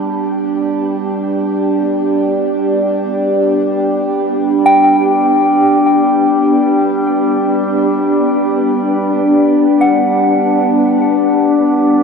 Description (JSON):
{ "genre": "ambient", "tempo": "free time", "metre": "none", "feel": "none", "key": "G major", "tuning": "A4 = 439 Hz", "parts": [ { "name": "glassy FM pad", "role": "sustained chords", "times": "0.0-12.0 s", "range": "B3 to G4", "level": "-15 LUFS", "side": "left 2 dB", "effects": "ensemble chorus, built-in reverb" }, { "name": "soft synth bell", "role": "arpeggios", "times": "0.0-12.0 s", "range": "F#5 to B5", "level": "-15 LUFS", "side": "left 1 dB", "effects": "chorus, phaser, ping-pong delay" }, { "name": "overtone-sweeping drone", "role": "drone", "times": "0.0-12.0 s", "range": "G3 to D4", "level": "-14 LUFS", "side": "right 1 dB", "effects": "chorus, built-in reverb" } ], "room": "wet huge ambient reverb, RT60 7.4 s", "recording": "none", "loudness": "-11 LUFS", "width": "side -5 dB against mid", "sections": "0.0-12.0 A section", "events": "fade-in on ambient pad 0.0-12.0", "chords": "0.0 Gmaj7" }